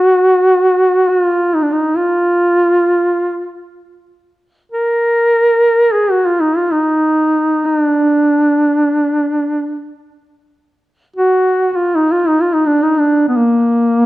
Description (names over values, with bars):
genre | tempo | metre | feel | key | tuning
caucasian folk, Caucasian lament | free time | none | none | unclear | A4 = 441 Hz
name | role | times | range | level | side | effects
mellow duduk | solo | 0.0-14.1 s | Bb3 to Bb4 | -11 LUFS | equal | none
room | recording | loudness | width
moderate scoring stage reverb, RT60 1.7 s | none | -11 LUFS | side -17 dB against mid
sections
0.0-14.1 A section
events
none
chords
none